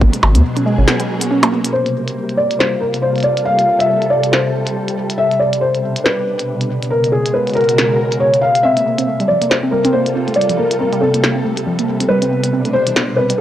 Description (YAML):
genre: IDM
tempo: 139 BPM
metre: 4/4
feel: swing 56% on 16ths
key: G dorian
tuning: A4 = 440 Hz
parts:
  - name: soft string machine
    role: sustained chords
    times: 0.0-13.4 s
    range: Cb3 to Bb4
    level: -20 LUFS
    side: equal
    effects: ensemble chorus
  - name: warbly dusty pluck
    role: arpeggios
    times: 0.0-1.6, 8.6-13.4 s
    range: E3 to Db4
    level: -19 LUFS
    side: right 2 dB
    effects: chorus, phaser, cassette tape, tape echo
  - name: round analog bass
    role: bass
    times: 0.0-0.8 s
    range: Ab1 to Eb2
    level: -12 LUFS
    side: equal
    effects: none
  - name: glitchy drum kit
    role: drums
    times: 0.1-13.4 s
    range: hi-hat, percussion blips, snare drum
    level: -19 LUFS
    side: equal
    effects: low-pass filter on hats, low-pass filter on perc, low-pass filter on snare, low-pass filter on room
  - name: felt-muted upright piano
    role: melody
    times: 1.7-13.4 s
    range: Ab4 to F5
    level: -16 LUFS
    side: left 1 dB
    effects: tape echo
room: moderate plate reverb, RT60 2.2 s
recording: dry, gritty hardware recording, cassette tape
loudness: -13 LUFS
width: side -12 dB against mid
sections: 0.0-1.7 A section; 1.7-13.4 B section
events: filter sweep on synth pluck 0.0-1.7; break 0.9-1.7; filter sweep on string machine 1.7-13.4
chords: 0.0 Abm11; 1.7 Gm11; 5.2 Am11; 6.7 Abm11; 8.6 Gm11; 12.1 Am11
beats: | 0.01 0.45 0.88 1.31 | 1.74 2.17 2.60 3.04 | 3.47 3.90 4.33 4.76 | 5.19 5.62 6.06 6.49 | 6.92 7.35 7.78 8.21 | 8.65 9.08 9.51 9.94 | 10.37 10.80 11.24 11.67 | 12.10 12.53 12.96 13.39